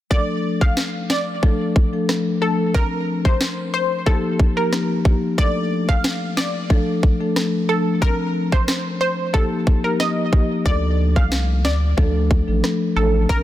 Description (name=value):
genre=dancehall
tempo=91 BPM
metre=4/4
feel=straight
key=D phrygian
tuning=A4 = 440 Hz
part: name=analog pluck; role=melody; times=0.1-13.4 s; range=A4 to F5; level=-24 LUFS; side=equal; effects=chorus, tape echo
part: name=marimba with medium mallets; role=accompaniment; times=0.1-13.4 s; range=F3 to Bb4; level=-22 LUFS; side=left 2 dB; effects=none
part: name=island pop drum kit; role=drums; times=0.1-13.4 s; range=kick drum, rim click, snare drum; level=-19 LUFS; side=equal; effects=none
part: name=round analog bass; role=bass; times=10.7-13.4 s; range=A1 to D2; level=-19 LUFS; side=equal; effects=none
room=light reverb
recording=dense, heavily limited modern master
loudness=-17 LUFS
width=side -13 dB against mid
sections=0.1-13.4 A section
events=none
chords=0.1 Dm; 2.7 Bbadd9; 4.1 Ebadd9; 5.4 Dm; 8.0 Bbadd9; 9.3 Ebadd9; 10.7 Dm